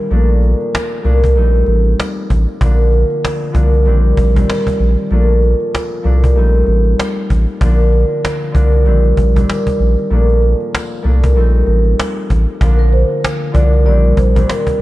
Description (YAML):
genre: hip hop, boom-bap hip-hop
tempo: 96 BPM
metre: 4/4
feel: swing 60% on 16ths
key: Bb major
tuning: A4 = 440 Hz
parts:
  - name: concert harp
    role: accompaniment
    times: 0.0-14.8 s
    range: Bb2 to Eb4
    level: -17 LUFS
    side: left 1 dB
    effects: high-pass filter, low-pass filter
  - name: saturated sub bass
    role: bass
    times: 0.1-14.4 s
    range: A1 to C2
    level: -11 LUFS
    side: equal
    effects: none
  - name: cajon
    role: drums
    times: 0.1-14.8 s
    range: none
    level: -20 LUFS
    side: equal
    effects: vintage 12-bit sampler grit
  - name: vibraphone with soft mallets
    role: melody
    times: 12.8-14.5 s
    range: Bb4 to D5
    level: -21 LUFS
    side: right 1 dB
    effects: high-pass filter, low-pass filter, diffuse ambient delay
room: studio reverb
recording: none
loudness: -11 LUFS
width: side -17 dB against mid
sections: 0.0-12.6 A section; 12.6-14.8 B section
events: none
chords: 0.1 Bbmaj9; 1.4 Am7b5; 2.6 Bb; 3.9 Cmadd9/Bb; 5.1 Bbmaj9; 6.4 Am7b5; 7.6 Bb; 8.9 Cmadd9/Bb; 10.1 Bbmaj9; 11.4 Am7b5; 12.6 Bb; 13.9 Cmadd9/Bb